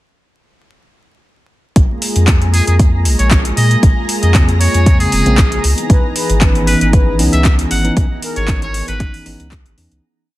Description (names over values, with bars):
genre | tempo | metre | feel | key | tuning
deep house | 116 BPM | 4/4 | swing 53% on 16ths | unclear | A4 = 439 Hz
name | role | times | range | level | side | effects
warm analog pad | sustained chords | 1.8-10.0 s | Fb3 to Ab4 | -23 LUFS | equal | chorus, vintage 12-bit sampler grit, sidechain pumping
warm sub bass | bass | 1.8-10.0 s | F1 to Bb2 | -14 LUFS | equal | none
deep house drum kit | drums | 1.8-10.0 s | handclaps, hi-hat | -20 LUFS | equal | overdrive
electronic kick drum | drums | 1.8-9.6 s | none | -12 LUFS | equal | overdrive
analog string pad | texture | 1.8-10.0 s | Ab4 to Bb5 | -27 LUFS | left 1 dB | ensemble chorus
trumpet with metal mute | melody | 2.5-9.3 s | Ab4 to Gb5 | -21 LUFS | equal | vintage 12-bit sampler grit, digital delay
mellow tine electric piano | stabs | 4.3-10.0 s | Db3 to Eb4 | -19 LUFS | equal | sidechain pumping, digital delay
mellow horn-like synth lead | melody | 5.9-8.5 s | Bb4 to Cb5 | -24 LUFS | left 2 dB | chorus, cassette tape, digital delay
room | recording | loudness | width
little or no reverb | dense, heavily limited modern master, vinyl crackle | -10 LUFS | side -16 dB against mid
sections
1.8-10.0 groove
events
fade-out 7.3-10.0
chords
1.8 Bbm9; 5.6 Dbm9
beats
| 1.76 2.28 2.79 3.31 | 3.83 4.35 4.86 5.38 | 5.90 6.42 6.93 7.45 | 7.97 8.48 9.00 9.52